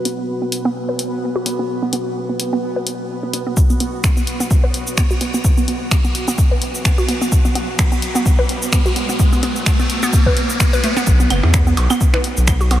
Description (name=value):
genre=minimal techno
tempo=128 BPM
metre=4/4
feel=swing 56% on 16ths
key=unclear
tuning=A4 = 440 Hz
part: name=bubbling stepped-filter texture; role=texture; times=0.0-11.1 s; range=B3 to B4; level=-32 LUFS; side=right 3 dB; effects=chorus, built-in reverb, sidechain pumping
part: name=deep dark ambient pad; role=texture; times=0.0-11.1 s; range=B3 to B4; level=-28 LUFS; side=equal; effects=chorus, built-in reverb, sidechain pumping
part: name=hollow square pluck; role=riff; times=0.1-12.8 s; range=A3 to B4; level=-22 LUFS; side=right 1 dB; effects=chorus, vintage 12-bit sampler grit, sidechain pumping, tape echo
part: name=punchy analog drum machine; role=drums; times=0.1-12.8 s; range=cabasa, finger snaps, hi-hat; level=-22 LUFS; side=left 1 dB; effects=none
part: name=electronic kick drum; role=drums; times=3.6-12.6 s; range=none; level=-15 LUFS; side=equal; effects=none
part: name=riser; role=sound effects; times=5.7-11.1 s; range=none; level=-27 LUFS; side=left 1 dB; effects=none
part: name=saturated sub bass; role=bass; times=11.1-12.8 s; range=F#1 to E2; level=-15 LUFS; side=equal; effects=tube saturation, sidechain pumping
part: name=claves and percussion blips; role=percussion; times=11.3-12.8 s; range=none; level=-25 LUFS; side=right 4 dB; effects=none
room=moderate huge ambient reverb, RT60 7.9 s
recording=dreamy mix soaked in reverb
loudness=-14 LUFS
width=side -12 dB against mid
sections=0.0-11.1 A section; 11.1-12.8 B section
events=build-up 0.0-11.1; filter sweep on synth arpeggio sound 0.0-11.1; riser 5.7-11.1; drop 11.1-12.8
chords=0.0 B5